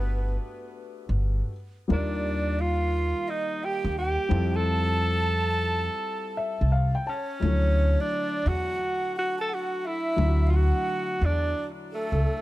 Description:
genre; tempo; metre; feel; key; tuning
hip hop; 87 BPM; 4/4; swing 64% on 16ths; D major; A4 = 439 Hz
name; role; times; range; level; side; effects
mellow tenor saxophone; melody; 0.0-12.4 s; A3 to A4; -29 LUFS; equal; tape echo
breathy mellow silver concert flute; second line; 0.0-12.4 s; A4 to A5; -34 LUFS; right 4 dB; none
dark concert grand piano; accompaniment; 0.0-12.4 s; D3 to A5; -33 LUFS; left 3 dB; none
upright bass; bass; 0.0-12.2 s; G1 to F2; -24 LUFS; equal; none
room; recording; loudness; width
studio ambience; none; -24 LUFS; side -17 dB against mid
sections
0.0-7.4 A section; 7.4-12.4 B section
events
grand piano fill 6.0-7.4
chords
0.0 Gmaj9; 1.9 Ebmaj9; 4.3 Fmaj9; 7.4 Dmaj9

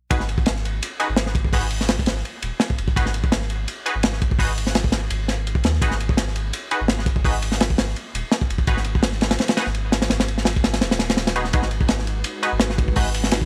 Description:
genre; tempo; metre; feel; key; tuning
drum and bass, jungle; 168 BPM; 4/4; swing 53% on 16ths; G# minor; A4 = 440 Hz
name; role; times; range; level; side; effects
band-passed chord stab; stabs; 0.1-13.1 s; D#4 to B4; -30 LUFS; equal; chorus, dub echo
soft dub sub bass; bass; 0.1-13.5 s; D#1 to D#2; -28 LUFS; equal; none
crunchy breakbeat drum kit; drums; 0.1-13.5 s; hi-hat, kick drum, ride cymbal, snare drum; -23 LUFS; equal; none
ethereal airy pad; sustained chords; 11.8-13.5 s; G#3 to B4; -35 LUFS; equal; ensemble chorus, built-in reverb
room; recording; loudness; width
small room ambience; dry, gritty hardware recording, faint mains hum; -22 LUFS; mono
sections
0.1-13.5 A section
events
kick drops out 10.8-11.5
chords
0.1 G#m7

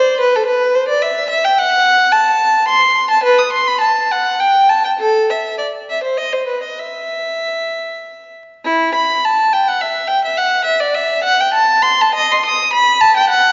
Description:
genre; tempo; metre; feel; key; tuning
classical, baroque-style suite movement for unaccompanied violin; 95-110 BPM; 3/4; rubato; E minor; A4 = 440 Hz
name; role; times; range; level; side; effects
warm violin; solo; 0.0-13.5 s; E4 to D#6; -15 LUFS; equal; none
room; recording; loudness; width
wet concert hall reverb, RT60 2.0 s; recorded in a church or concert hall, vinyl crackle, nothing above 7.5 kHz; -15 LUFS; mono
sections
0.0-8.6 A section; 8.6-13.5 B section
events
none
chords
none

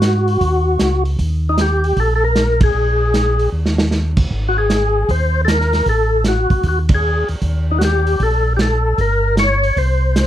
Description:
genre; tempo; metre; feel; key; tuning
soul jazz organ trio; 154 BPM; 4/4; swing 66% on 8ths; unclear; A4 = 440 Hz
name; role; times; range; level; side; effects
percussive tonewheel organ; melody; 0.0-10.3 s; Eb4 to Db5; -17 LUFS; left 1 dB; slow rotary speaker, overdrive, chorus vibrato
mellow tonewheel organ; bass; 0.0-10.3 s; G1 to Ab2; -17 LUFS; equal; slow rotary speaker
vintage drum kit; drums; 0.0-10.3 s; crash cymbal, hi-hat, kick drum, ride cymbal, snare drum; -19 LUFS; right 2 dB; none
room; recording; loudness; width
light reverb; dark, warm production; -14 LUFS; side -12 dB against mid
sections
0.0-10.3 A section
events
band accent 2.6, 6.8; drum fill 3.5-3.9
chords
0.0 Ab5; 1.2 Eb; 2.8 Absus2/Bb; 3.5 N.C.; 4.3 Absus2; 5.9 Gbm69/A; 7.4 Eb; 9.0 Gdim; 9.8 N.C.

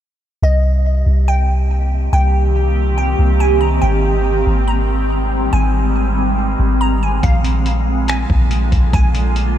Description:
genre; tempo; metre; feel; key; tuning
hip hop, atmospheric cloud-rap; 141 BPM; 4/4; half-time; C minor; A4 = 440 Hz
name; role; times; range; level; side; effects
glassy wavetable pluck; melody; 0.4-9.6 s; Eb5 to Bb5; -24 LUFS; equal; chorus, tape echo
granular cloud pad; sustained chords; 1.6-9.6 s; D3 to G4; -19 LUFS; right 1 dB; built-in reverb, wide subtle chorus, sidechain pumping
soft 808-style bass; bass; 0.4-9.6 s; Ab1 to C2; -15 LUFS; equal; none
trip hop sampler-style drum kit; drums; 7.2-9.5 s; finger snaps, hi-hat, kick drum; -18 LUFS; equal; overdrive
room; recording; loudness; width
light reverb; none; -13 LUFS; side -11 dB against mid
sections
0.4-9.6 A section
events
none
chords
0.4 Cm7; 3.8 Abmaj7; 7.2 Bb7

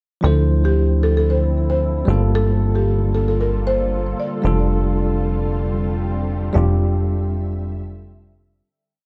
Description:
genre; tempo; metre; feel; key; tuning
afrobeats; 114 BPM; 4/4; straight; F major; A4 = 440 Hz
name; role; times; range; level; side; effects
buzzing marimba with medium mallets; melody; 0.2-4.3 s; G4 to D5; -26 LUFS; equal; digital delay
bell-like tine electric piano; accompaniment; 0.2-8.7 s; F3 to C5; -26 LUFS; equal; none
ethereal airy pad; sustained chords; 0.8-8.6 s; D3 to E5; -32 LUFS; equal; ensemble chorus, built-in reverb
plucky analog bass; bass; 0.2-8.6 s; F1 to D2; -21 LUFS; equal; none
room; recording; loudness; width
digital ambience; dark, warm production; -19 LUFS; mono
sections
0.2-8.7 breakdown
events
fade-out 6.6-8.7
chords
0.2 Dm9; 2.1 Gm9; 4.4 F69

